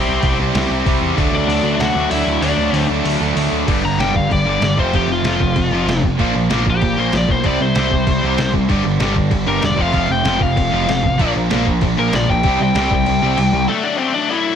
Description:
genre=punk rock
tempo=192 BPM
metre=4/4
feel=straight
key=unclear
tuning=A4 = 439 Hz
part: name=biting lead guitar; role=melody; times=0.0-14.6 s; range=A3 to Bb5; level=-20 LUFS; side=left 3 dB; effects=overdrive, digital delay
part: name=fuzz guitar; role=riff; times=0.0-13.7 s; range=F2 to G4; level=-22 LUFS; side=right 1 dB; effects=distortion
part: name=overdriven electric guitar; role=riff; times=0.0-14.6 s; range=F2 to E4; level=-22 LUFS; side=left 10 dB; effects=none
part: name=sludgy distorted guitar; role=riff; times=0.0-13.7 s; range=F2 to D4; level=-22 LUFS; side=right 11 dB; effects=overdrive
part: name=growling picked electric bass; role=bass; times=0.1-13.7 s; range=E1 to E2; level=-22 LUFS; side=equal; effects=overdrive
part: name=trip hop sampler-style drum kit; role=drums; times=0.2-13.4 s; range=crash cymbal, hi-hat, kick drum, snare drum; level=-22 LUFS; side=equal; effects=none
room=light reverb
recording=none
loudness=-14 LUFS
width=side -8 dB against mid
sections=0.0-3.7 A section; 3.7-13.7 B section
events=half time 0.0-3.7; kick and snare drop out 2.4-3.7, 13.1-13.7; lead electric guitar solo 3.7-13.7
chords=0.0 C; 1.2 D; 3.7 G; 4.8 F; 6.2 Bb; 7.4 C; 8.7 G; 9.8 F; 11.2 Bb; 12.4 C; 13.7 D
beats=0.23 0.54 0.86 | 1.17 1.48 1.80 2.11 | 2.42 2.74 3.05 3.36 | 3.68 3.99 4.30 4.62 | 4.93 5.25 5.56 5.87 | 6.18 6.50 6.81 7.13 | 7.44 7.75 8.07 8.38 | 8.69 9.01 9.32 9.63 | 9.94 10.26 10.57 10.88 | 11.19 11.51 11.82 12.13 | 12.44 12.75 13.06 13.38 | 13.69 14.00 14.31

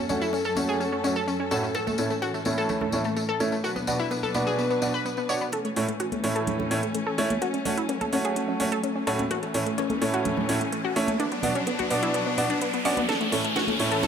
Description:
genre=progressive house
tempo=127 BPM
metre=4/4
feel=straight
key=A major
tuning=A4 = 440 Hz
part: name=warm studio string section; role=sustained chords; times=0.0-14.1 s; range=F#2 to B4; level=-31 LUFS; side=left 2 dB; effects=none
part: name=analog pluck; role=arpeggios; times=0.0-14.1 s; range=A3 to C#5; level=-28 LUFS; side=left 1 dB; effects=chorus, vintage 12-bit sampler grit, digital delay
part: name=bright grand piano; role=stabs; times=0.1-14.0 s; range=A2 to D5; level=-28 LUFS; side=right 2 dB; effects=low-pass filter, digital delay
part: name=congas and bongos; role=percussion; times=0.1-14.1 s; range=none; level=-36 LUFS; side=right 2 dB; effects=none
part: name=tambourine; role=percussion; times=0.1-5.5 s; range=none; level=-37 LUFS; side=left 6 dB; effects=none
part: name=saturated sub bass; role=bass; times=5.5-14.1 s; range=none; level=barely audible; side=none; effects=none
part: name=house drum kit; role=drums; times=5.5-14.1 s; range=hi-hat, snare drum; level=-34 LUFS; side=equal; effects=overdrive, low-pass filter on hats, low-pass filter on snare, low-pass filter on room
part: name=riser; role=sound effects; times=8.1-14.1 s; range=none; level=-34 LUFS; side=equal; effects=none
room=moderate lush hall reverb, RT60 2.0 s, small room ambience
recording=none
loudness=-24 LUFS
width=side -7 dB against mid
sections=0.0-5.5 A section; 5.5-14.1 B section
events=build-up 5.5-14.1; filter sweep on synth pluck 5.5-14.1; riser 8.1-14.1; drum fill 13.1-14.1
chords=0.0 F#m; 1.7 A; 3.6 Bm; 5.5 A; 7.4 F#m; 9.3 A; 11.2 Bm; 13.1 A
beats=0.33 0.80 1.28 | 1.75 2.22 2.69 3.17 | 3.64 4.11 4.58 5.06 | 5.53 6.00 6.47 6.95 | 7.42 7.89 8.36 8.84 | 9.31 9.78 10.25 10.72 | 11.20 11.67 12.14 12.62 | 13.09 13.56 14.03

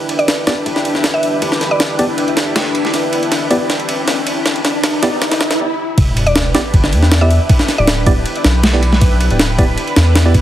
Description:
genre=drum and bass, jungle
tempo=158 BPM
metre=4/4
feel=straight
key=E minor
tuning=A4 = 440 Hz
part: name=lush unison pad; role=sustained chords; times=0.0-10.4 s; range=D4 to B4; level=-20 LUFS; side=left 1 dB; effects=chorus, phaser, vintage 12-bit sampler grit
part: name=riser and sub drop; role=sound effects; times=2.3-7.5 s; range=none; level=-22 LUFS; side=equal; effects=none
part: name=jungle sampler-style drum kit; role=drums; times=0.1-10.4 s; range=kick drum, ride cymbal, snare drum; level=-15 LUFS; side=equal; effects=high-pass filter on kick, high-pass filter on cymbals, high-pass filter on snare, high-pass filter on room
part: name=mallet-like synth pluck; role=melody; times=0.2-2.0, 6.3-8.1 s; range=D5 to E5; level=-22 LUFS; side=right 1 dB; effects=chorus, dub echo
part: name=tine electric piano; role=stabs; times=0.5-10.3 s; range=B3 to D5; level=-21 LUFS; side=right 2 dB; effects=medium stereo tremolo, low-pass filter, dub echo
part: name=soft dub sub bass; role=bass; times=6.0-10.4 s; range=D1 to E2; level=-13 LUFS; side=equal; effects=none
room=moderate digital room reverb, RT60 1.1 s, digital ambience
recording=heavily compressed radio sound, multiband compression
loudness=-12 LUFS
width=side -12 dB against mid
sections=0.0-6.0 A section; 6.0-10.4 B section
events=build-up 0.0-6.0; riser 2.3-5.6; drum fill 2.9-5.6; break 5.6-6.0; drop 6.0-10.4; impact 6.0-7.5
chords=0.0 Em7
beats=0.28 0.66 1.04 | 1.42 1.80 2.18 2.56 | 2.94 3.32 3.70 4.08 | 4.46 4.84 5.22 5.60 | 5.98 6.36 6.74 7.12 | 7.50 7.88 8.26 8.63 | 9.02 9.39 9.77 10.15

